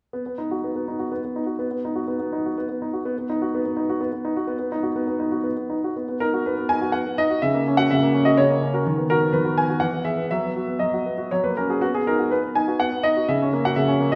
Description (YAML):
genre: classical-period piano sonatina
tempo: 124 BPM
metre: 3/4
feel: straight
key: B major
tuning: A4 = 441 Hz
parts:
  - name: clear grand piano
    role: solo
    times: 0.1-14.2 s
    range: C#3 to G#5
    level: -23 LUFS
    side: equal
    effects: none
room: wet recital hall reverb, RT60 1.8 s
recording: none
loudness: -23 LUFS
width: mono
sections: 0.1-6.0 A section; 6.0-14.2 B section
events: none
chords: 0.1 B; 7.4 F#/C#; 8.9 B/D#; 9.8 E; 10.3 B/F#; 11.3 F#; 11.8 B; 13.3 F#/C#